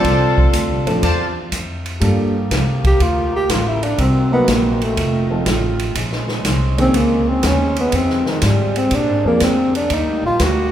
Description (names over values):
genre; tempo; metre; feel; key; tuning
jazz, big band swing; 122 BPM; 4/4; swing 68% on 8ths; unclear; A4 = 440 Hz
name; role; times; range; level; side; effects
warm saxophone section; melody; 0.0-1.5 s; C4 to A4; -20 LUFS; left 2 dB; none
warm baby grand piano; accompaniment; 0.0-9.4 s; Eb3 to Bb4; -23 LUFS; right 1 dB; none
bright trumpet section; stabs; 0.0-1.3 s; F4 to A5; -23 LUFS; equal; none
upright bass; bass; 0.0-10.7 s; F1 to Bb2; -20 LUFS; equal; none
swinging big-band drum kit; drums; 0.0-10.6 s; hi-hat, kick drum, ride cymbal, snare drum; -21 LUFS; equal; none
warm saxophone section; sustained chords; 2.0-10.7 s; C3 to G4; -26 LUFS; equal; none
breathy tenor saxophone; melody; 2.9-10.7 s; Eb3 to G4; -17 LUFS; equal; none
room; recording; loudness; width
wet recital hall reverb, RT60 1.5 s; recorded in a church or concert hall; -14 LUFS; side -10 dB against mid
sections
0.0-2.0 A section; 2.0-10.7 B section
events
tenor saxophone solo 2.0-10.7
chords
0.0 F6; 2.0 Gm9; 4.0 Cm7b5; 5.0 F7b9; 6.0 Bbm11; 7.9 Fm7; 8.9 Bb9; 9.9 Ebmaj7